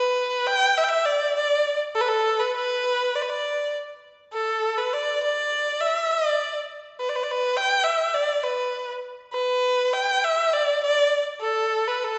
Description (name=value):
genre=chinese traditional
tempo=102 BPM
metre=4/4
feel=rubato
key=unclear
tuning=A4 = 441 Hz
part: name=clear erhu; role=solo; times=0.0-12.2 s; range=A4 to G5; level=-24 LUFS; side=equal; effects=none
room=wet recital hall reverb, RT60 1.6 s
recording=heard from further back in the room, nothing above 8.0 kHz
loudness=-24 LUFS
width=mono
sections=0.0-12.2 A section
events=none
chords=none